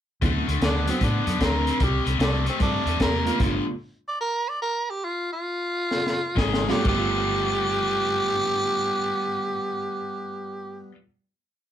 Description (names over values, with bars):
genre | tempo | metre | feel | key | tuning
electric blues shuffle | 121-151 BPM | 4/4 | swing 66% on 8ths | G major | A4 = 440 Hz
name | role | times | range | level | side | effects
barky reed electric piano | accompaniment | 0.2-3.7, 6.7-11.1 s | G2 to F#4 | -31 LUFS | right 5 dB | overdrive
cranked stack guitar | riff | 0.2-3.6, 6.4-11.0 s | G2 to A4 | -28 LUFS | left 4 dB | overdrive
vintage muted fingered electric bass | bass | 0.2-3.6, 6.4-10.9 s | G1 to A2 | -28 LUFS | equal | none
crunchy breakbeat drum kit | drums | 0.2-3.5, 5.9-7.0 s | crash cymbal, hi-hat, kick drum, snare drum | -26 LUFS | equal | none
growling tenor saxophone | melody | 0.6-10.9 s | C4 to D5 | -26 LUFS | right 2 dB | none
room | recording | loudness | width
light reverb | band playing live in one room | -22 LUFS | side -10 dB against mid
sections
0.2-6.9 head; 6.9-10.8 final chord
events
slowing down 3.4-6.9; stop 3.4-6.4; drum fill 5.9-6.9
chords
0.2 D13; 1.8 C13; 3.4 G9; 6.4 Ab5; 6.9 G9